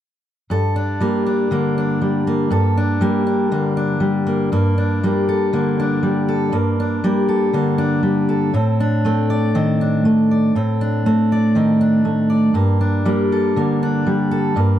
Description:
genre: folk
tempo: 120 BPM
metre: 4/4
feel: straight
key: G minor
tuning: A4 = 440 Hz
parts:
  - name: fingerpicked steel-string acoustic guitar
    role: solo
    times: 0.5-14.8 s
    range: G2 to D5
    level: -15 LUFS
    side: equal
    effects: none
room: light reverb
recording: dry, close 1970s-style studio recording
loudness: -15 LUFS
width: side -11 dB against mid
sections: 0.5-4.5 A section; 4.5-14.8 B section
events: none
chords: 0.5 Gmadd9; 8.5 Adim; 12.6 Gmadd9

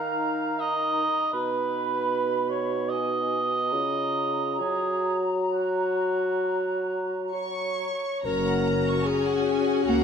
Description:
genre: classical, slow romantic movement for symphony orchestra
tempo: 59-82 BPM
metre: 4/4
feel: rubato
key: F# major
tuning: A4 = 440 Hz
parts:
  - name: dark clarinet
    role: second line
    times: 0.0-10.0 s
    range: D#4 to C#5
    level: -30 LUFS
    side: left 2 dB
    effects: none
  - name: flute section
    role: second line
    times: 0.0-7.9 s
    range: G#5 to B5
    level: -33 LUFS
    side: equal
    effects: none
  - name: mellow cor anglais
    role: second line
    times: 0.0-7.3 s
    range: F#4 to E#5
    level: -28 LUFS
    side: right 2 dB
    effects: none
  - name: mellow bassoon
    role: accompaniment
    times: 0.0-7.9 s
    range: B2 to F#3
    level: -30 LUFS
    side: right 3 dB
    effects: none
  - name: rich chamber violin section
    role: melody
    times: 7.3-10.0 s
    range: F#5 to C#6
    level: -34 LUFS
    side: left 1 dB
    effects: none
  - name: rich chamber viola section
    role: accompaniment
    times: 8.2-10.0 s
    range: C#4 to F#4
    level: -30 LUFS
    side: equal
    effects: none
  - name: dark French horn section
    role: sustained chords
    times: 8.2-10.0 s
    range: C#4 to F#4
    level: -28 LUFS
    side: left 10 dB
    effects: none
  - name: rich chamber violin section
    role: second line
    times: 8.3-10.0 s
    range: C#5 to C#6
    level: -34 LUFS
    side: right 2 dB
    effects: none
  - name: rich chamber double bass section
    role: bass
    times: 8.3-10.0 s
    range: F#1 to C#2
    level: -30 LUFS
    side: right 3 dB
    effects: none
  - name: clear symphonic cello section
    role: bass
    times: 9.8-10.0 s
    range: A#3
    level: -24 LUFS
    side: right 2 dB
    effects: none
room: moderate scoring stage reverb, RT60 1.5 s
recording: none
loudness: -24 LUFS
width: side -7 dB against mid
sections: 0.0-8.3 A section; 8.3-10.0 B section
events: none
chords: 0.0 D#5; 1.3 B; 3.7 C#69; 4.6 F#

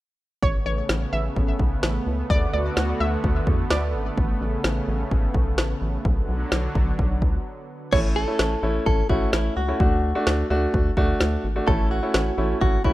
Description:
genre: synth-pop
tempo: 128 BPM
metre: 4/4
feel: straight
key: A major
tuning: A4 = 441 Hz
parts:
  - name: analog pluck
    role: second line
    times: 0.4-4.0 s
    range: C#5 to E5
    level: -30 LUFS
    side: equal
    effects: chorus, ping-pong delay
  - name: lush unison pad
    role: sustained chords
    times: 0.4-7.9 s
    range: C#3 to F#4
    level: -29 LUFS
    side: right 1 dB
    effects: chorus
  - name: rubbery square bass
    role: bass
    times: 0.4-12.9 s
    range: G#1 to E2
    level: -25 LUFS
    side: equal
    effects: none
  - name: deep house drum kit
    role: drums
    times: 0.4-12.9 s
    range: crash cymbal, kick drum, snare drum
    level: -23 LUFS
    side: equal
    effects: none
  - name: direct-recorded clean electric guitar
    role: melody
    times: 7.9-12.9 s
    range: E4 to C#5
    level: -26 LUFS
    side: equal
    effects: phaser
  - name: clear concert grand piano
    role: accompaniment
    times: 7.9-12.9 s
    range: A3 to F#4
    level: -25 LUFS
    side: equal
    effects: none
room: little or no reverb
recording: rough home demo mix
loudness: -20 LUFS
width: side -16 dB against mid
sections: 0.4-7.9 A section; 7.9-12.9 B section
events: break 7.5-7.9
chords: 0.4 Aadd9; 2.3 D6; 4.2 Aadd9; 6.0 Bm; 7.9 A; 9.8 D; 11.7 A

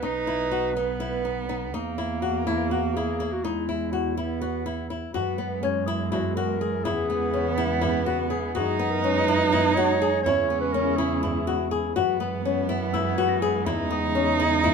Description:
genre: contemporary instrumental, chamber music in an uneven meter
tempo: 246 BPM (eighths)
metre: 7/8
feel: straight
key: E lydian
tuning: A4 = 440 Hz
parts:
  - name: growling clarinet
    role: melody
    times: 0.0-11.7 s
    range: E4 to C#5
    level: -28 LUFS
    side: right 2 dB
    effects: none
  - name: warm cello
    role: second line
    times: 0.0-14.7 s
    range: G#3 to D#4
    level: -28 LUFS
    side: right 4 dB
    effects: none
  - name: flamenco guitar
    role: arpeggios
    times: 0.0-14.7 s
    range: B3 to G#4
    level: -28 LUFS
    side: left 8 dB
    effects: none
  - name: dark double bass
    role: bass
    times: 0.0-14.7 s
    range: B1 to F#2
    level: -30 LUFS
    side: right 4 dB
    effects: none
  - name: dark chamber string section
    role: sustained chords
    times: 5.2-14.7 s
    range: B2 to E4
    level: -33 LUFS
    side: left 2 dB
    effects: none
  - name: frame drum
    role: percussion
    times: 5.2-14.7 s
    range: none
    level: -35 LUFS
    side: right 2 dB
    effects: none
  - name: celesta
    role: texture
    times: 5.6-7.0, 11.7-14.7 s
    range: C#6 to A#6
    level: -37 LUFS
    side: left 7 dB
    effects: none
room: moderate studio ambience, RT60 0.5 s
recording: minimal, uncompressed stereo recording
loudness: -22 LUFS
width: side -6 dB against mid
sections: 0.0-5.2 A section; 5.2-14.7 B section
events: none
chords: 0.0 B; 1.7 Eadd9(#11); 5.2 F#9sus4; 6.9 E6; 8.6 F#9sus4; 10.3 E6; 12.0 F#9sus4; 13.7 E6

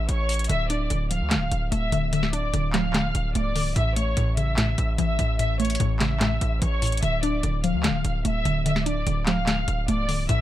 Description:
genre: hip hop, trap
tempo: 147 BPM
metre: 4/4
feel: half-time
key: D harmonic minor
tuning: A4 = 442 Hz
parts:
  - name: rich studio violin section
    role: melody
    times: 0.0-10.4 s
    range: C#5 to F6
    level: -29 LUFS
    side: left 1 dB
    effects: low-pass filter
  - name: distorted 808-style bass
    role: bass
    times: 0.0-10.4 s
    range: C#1 to D2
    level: -25 LUFS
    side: equal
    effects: distortion
  - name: booming analog drum machine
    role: drums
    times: 0.1-10.4 s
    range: handclaps, hi-hat, snare drum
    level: -27 LUFS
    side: left 1 dB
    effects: none
  - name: mallet-like synth pluck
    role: accompaniment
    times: 0.5-10.4 s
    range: A2 to D4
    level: -27 LUFS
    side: equal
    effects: chorus, phaser, low-pass filter
room: little or no reverb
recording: none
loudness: -22 LUFS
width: side -13 dB against mid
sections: 0.0-10.4 A section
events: none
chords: 0.5 Dm; 3.8 A; 7.0 Dm

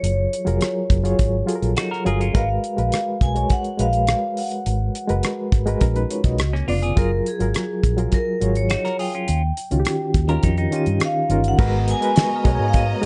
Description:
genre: lush 1970s-style soul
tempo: 104 BPM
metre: 4/4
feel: straight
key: G# dorian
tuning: A4 = 439 Hz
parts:
  - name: vibraphone with medium hard mallets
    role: melody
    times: 0.0-13.1 s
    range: G#4 to G#5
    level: -28 LUFS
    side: equal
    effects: slapback echo, plate reverb
  - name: barky reed electric piano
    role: accompaniment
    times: 0.0-13.1 s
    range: C#3 to D#5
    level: -26 LUFS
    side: equal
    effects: overdrive, fast tremolo, plate reverb
  - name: vintage muted fingered electric bass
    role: bass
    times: 0.0-13.1 s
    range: E#1 to G#2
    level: -24 LUFS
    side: equal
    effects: none
  - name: damped 70s drum kit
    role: drums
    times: 0.0-13.1 s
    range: crash cymbal, hi-hat, kick drum, rim click, snare drum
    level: -23 LUFS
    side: equal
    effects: none
  - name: clean electric guitar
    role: riff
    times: 1.8-2.5, 6.5-11.4 s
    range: A#3 to A#4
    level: -31 LUFS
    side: equal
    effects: none
  - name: rich studio violin section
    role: second line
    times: 11.6-13.1 s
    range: B3 to A#5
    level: -32 LUFS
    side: equal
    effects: plate reverb
  - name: glockenspiel with hard plastic mallets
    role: texture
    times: 12.2-13.1 s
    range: C#6 to G#6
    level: -39 LUFS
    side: equal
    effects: plate reverb
room: light reverb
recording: dark, warm production, nothing above 10.3 kHz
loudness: -21 LUFS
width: mono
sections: 0.0-11.6 A section; 11.6-13.1 B section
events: none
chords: 0.0 F#maj9; 2.3 G#m9; 6.4 C#7b9; 7.0 F#maj9; 9.3 D#9; 11.6 G#m9

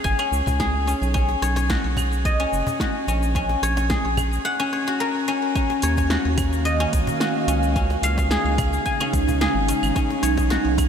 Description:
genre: organic downtempo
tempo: 109 BPM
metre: 4/4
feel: straight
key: Eb minor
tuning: A4 = 439 Hz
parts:
  - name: guzheng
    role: arpeggios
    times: 0.0-10.9 s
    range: Db4 to Ab5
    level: -23 LUFS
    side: left 2 dB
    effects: ping-pong delay
  - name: round analog bass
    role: bass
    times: 0.0-10.9 s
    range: F#1 to Eb2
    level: -23 LUFS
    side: equal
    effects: none
  - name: electronic kick drum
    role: drums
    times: 0.0-10.9 s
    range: none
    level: -25 LUFS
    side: right 1 dB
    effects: overdrive
  - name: deep house drum kit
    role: drums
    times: 0.1-10.9 s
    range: claves, hi-hat, shaker, snare drum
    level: -30 LUFS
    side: right 1 dB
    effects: overdrive
  - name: cajon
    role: percussion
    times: 0.5-10.9 s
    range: none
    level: -36 LUFS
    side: left 1 dB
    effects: none
  - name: ethereal airy pad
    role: sustained chords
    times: 6.2-10.9 s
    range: Db3 to F5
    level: -26 LUFS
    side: right 3 dB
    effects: ensemble chorus, built-in reverb, sidechain pumping
room: moderate huge ambient reverb, RT60 7.8 s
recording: dreamy mix soaked in reverb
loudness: -19 LUFS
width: side -7 dB against mid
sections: 0.0-5.6 A section; 5.6-10.9 B section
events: none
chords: 0.0 Db; 1.1 Badd9; 3.3 Gbadd9/Bb; 5.6 Ebm7; 7.8 Db; 10.0 Badd9

